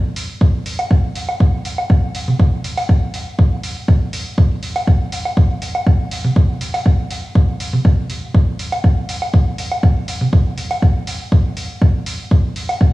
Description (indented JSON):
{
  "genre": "techno",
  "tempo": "121 BPM",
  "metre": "4/4",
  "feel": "straight",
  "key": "none",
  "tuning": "none",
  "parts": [
    { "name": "electronic hi-hat", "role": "drums", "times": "0.2-12.8 s", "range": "none", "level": "-30 LUFS", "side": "right 1 dB", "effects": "overdrive" },
    { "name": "electronic kick drum", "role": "drums", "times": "0.4-12.9 s", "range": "none", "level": "-13 LUFS", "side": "equal", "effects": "none" },
    { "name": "electronic woodblock and toms", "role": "percussion", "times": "0.8-12.8 s", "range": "none", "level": "-23 LUFS", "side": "right 1 dB", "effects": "sidechain pumping on perc, sidechain pumping on toms, dub echo" }
  ],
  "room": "little or no reverb",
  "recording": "played on a big sound system in a bare room, stone room reverb, small room ambience",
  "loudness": "-14 LUFS",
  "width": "side -18 dB against mid",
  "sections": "0.0-12.9 A section",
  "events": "none",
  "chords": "none",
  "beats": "0.41 0.91 1.40 | 1.90 2.40 2.89 3.39 | 3.88 4.38 4.87 5.37 | 5.87 6.36 6.86 7.35 | 7.85 8.35 8.84 9.34 | 9.83 10.33 10.82 11.32 | 11.82 12.31 12.81"
}